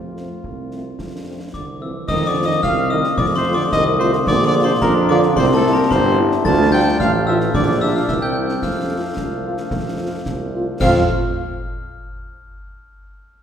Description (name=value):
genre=military-style march for wind band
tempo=110 BPM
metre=2/4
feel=straight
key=F major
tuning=A4 = 440 Hz
part: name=mellow cornet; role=melody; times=0.0-11.0 s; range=F4 to A5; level=-24 LUFS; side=equal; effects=none
part: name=mellow euphonium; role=second line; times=0.0-11.0 s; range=A2 to D4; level=-24 LUFS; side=right 3 dB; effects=none
part: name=clear tuba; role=bass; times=0.0-11.0 s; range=G1 to F2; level=-21 LUFS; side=right 1 dB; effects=none
part: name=mellow French horn section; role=accompaniment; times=0.2-11.0 s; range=F3 to F4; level=-25 LUFS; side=left 1 dB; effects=none
part: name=concert snare drum, concert bass drum and clash cymbals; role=drums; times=0.2-11.1 s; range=none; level=-26 LUFS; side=left 1 dB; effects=none
part: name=glockenspiel with hard plastic mallets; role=second line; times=1.5-11.1 s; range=A5 to A6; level=-23 LUFS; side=left 4 dB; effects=none
part: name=warm trombone section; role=sustained chords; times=2.6-11.0 s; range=A3 to F4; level=-25 LUFS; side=right 1 dB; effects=none
room=wet scoring stage reverb, RT60 1.8 s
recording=heard from further back in the room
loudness=-15 LUFS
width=side -8 dB against mid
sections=0.0-2.1 A section; 2.1-10.8 B section; 10.8-11.9 C section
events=none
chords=0.0 F; 4.3 Bb; 5.4 C; 6.5 Dm; 7.5 Gm7/Bb; 8.1 C7; 8.6 F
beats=0.45 | 1.00 1.54 | 2.09 2.63 | 3.18 3.73 | 4.27 4.82 | 5.36 5.91 | 6.45 6.99 | 7.54 8.08 | 8.63 9.17 | 9.72 10.26 | 10.81